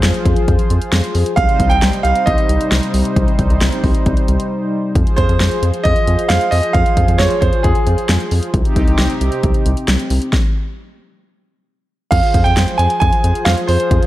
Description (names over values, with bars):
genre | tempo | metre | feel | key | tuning
synth-pop | 134 BPM | 4/4 | straight | F minor | A4 = 440 Hz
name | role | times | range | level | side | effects
brassy analog pad | sustained chords | 0.0-14.1 s | C3 to C5 | -21 LUFS | left 1 dB | chorus, tremolo
rubbery square bass | bass | 0.0-14.0 s | C2 to F2 | -16 LUFS | equal | none
deep house drum kit | drums | 0.0-14.1 s | crash cymbal, hi-hat, kick drum, snare drum | -17 LUFS | equal | none
bright concert grand piano | melody | 1.4-8.3, 12.1-14.1 s | Ab4 to Ab5 | -18 LUFS | right 3 dB | none
room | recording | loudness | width
light reverb | dark, warm production | -12 LUFS | side -15 dB against mid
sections
0.0-5.0 A section; 5.0-12.1 B section; 12.1-14.1 A section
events
break 4.5-5.0; stop 10.3-12.1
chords
0.0 Fm; 1.4 Cm; 5.0 Fm; 8.5 Cm; 12.1 Fm